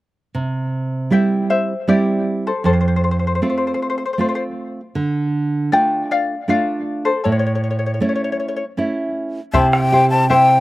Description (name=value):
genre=andean folk, Andean ensemble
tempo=78 BPM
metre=3/4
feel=straight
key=unclear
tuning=A4 = 440 Hz
part: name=nylon-string guitar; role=accompaniment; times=0.3-10.6 s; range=F2 to C5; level=-18 LUFS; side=right 2 dB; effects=none
part: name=charango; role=accompaniment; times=1.1-10.6 s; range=E4 to G5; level=-19 LUFS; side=left 2 dB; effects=slapback echo
part: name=breathy large quena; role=melody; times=9.5-10.6 s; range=G5 to A5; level=-16 LUFS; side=left 1 dB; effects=none
part: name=bombo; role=percussion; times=9.5-10.6 s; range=none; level=-22 LUFS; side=equal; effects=none
room=little or no reverb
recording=recorded outdoors, with no room sound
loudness=-16 LUFS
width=side -17 dB against mid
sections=0.3-9.5 A section; 9.5-10.6 B section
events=charango solo 0.3-9.5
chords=0.3 C; 2.6 F; 5.0 Dm; 7.3 A; 9.5 C